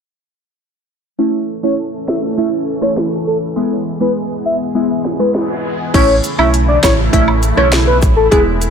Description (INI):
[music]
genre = dancehall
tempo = 101 BPM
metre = 4/4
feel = straight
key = A major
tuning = A4 = 442 Hz
[part]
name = glassy wavetable pluck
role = accompaniment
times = 1.2-8.5 s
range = G#3 to E4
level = -18 LUFS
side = right 2 dB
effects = chorus, sidechain pumping
[part]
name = lush unison pad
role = sustained chords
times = 1.4-8.7 s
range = B2 to A4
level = -22 LUFS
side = equal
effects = chorus, phaser, sidechain pumping
[part]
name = soft octave-layered synth lead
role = melody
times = 1.6-8.4 s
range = G#4 to E5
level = -16 LUFS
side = left 2 dB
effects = chorus, digital delay
[part]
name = island pop drum kit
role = drums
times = 2.1-8.7 s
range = crash cymbal, finger snaps, hi-hat, kick drum, rim click, snare drum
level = -17 LUFS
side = equal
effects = overdrive
[part]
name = sub bass with octave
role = bass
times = 5.9-8.7 s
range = E1 to B1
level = -16 LUFS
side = equal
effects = none
[part]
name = cabasa and woodblock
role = percussion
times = 6.2-8.7 s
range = none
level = -23 LUFS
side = right 3 dB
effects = none
[sound]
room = light reverb, digital ambience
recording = blown-out, overdriven recording, overdrive, low-pass filter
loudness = -12 LUFS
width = side -7 dB against mid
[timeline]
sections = 1.2-5.9 A section; 5.9-8.7 B section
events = filter sweep 1.2-5.9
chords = 1.2 A; 3.6 E; 5.9 A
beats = | 1.19 1.78 2.38 2.97 | 3.57 4.16 4.75 5.35 | 5.94 6.54 7.13 7.73 | 8.32